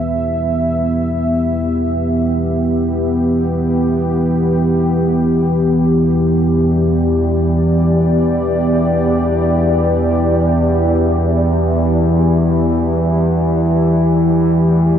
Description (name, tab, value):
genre	dark ambient drone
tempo	free time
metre	none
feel	none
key	E minor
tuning	A4 = 441 Hz
part	dark analog pad	sustained chords	0.0-15.0 s	E3 to E5	-16 LUFS	equal	chorus
part	analog drone	drone	0.0-15.0 s	E2 to E3	-15 LUFS	equal	chorus
part	bronze singing bowl	texture	0.0-15.0 s	B3 to B4	-32 LUFS	left 4 dB	none
room	moderate huge ambient reverb, RT60 8.7 s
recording	dark, warm production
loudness	-13 LUFS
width	side -9 dB against mid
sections	0.0-15.0 A section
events	none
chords	0.0 Em; 12.9 N.C.